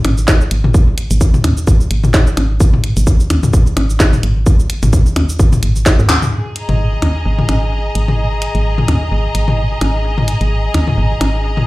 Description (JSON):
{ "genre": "minimal techno", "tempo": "129 BPM", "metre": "4/4", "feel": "swing 56% on 16ths", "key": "unclear", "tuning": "A4 = 441 Hz", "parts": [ { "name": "woody FM bass", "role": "bass", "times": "0.0-11.6 s", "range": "G#1 to G#2", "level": "-16 LUFS", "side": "equal", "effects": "sidechain pumping" }, { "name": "house drum kit", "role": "drums", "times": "0.0-11.3 s", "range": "handclaps, hi-hat, shaker, snare drum", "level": "-19 LUFS", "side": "equal", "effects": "none" }, { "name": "electronic percussion blips and toms", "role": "percussion", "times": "0.0-11.7 s", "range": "none", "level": "-18 LUFS", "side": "left 1 dB", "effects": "digital delay" }, { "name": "electronic kick drum", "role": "drums", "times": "0.3-6.0 s", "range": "none", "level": "-11 LUFS", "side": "equal", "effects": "none" }, { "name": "bright studio string section", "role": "texture", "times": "6.3-11.7 s", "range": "G#4 to A#5", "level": "-21 LUFS", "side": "left 1 dB", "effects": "sidechain pumping" } ], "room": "light reverb", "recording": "played on a big sound system in a bare room, large studio reverb", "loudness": "-11 LUFS", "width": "side -19 dB against mid", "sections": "0.0-6.3 A section; 6.3-11.7 B section", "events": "drum fill 6.1; band accent 6.1", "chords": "0.0 G#5" }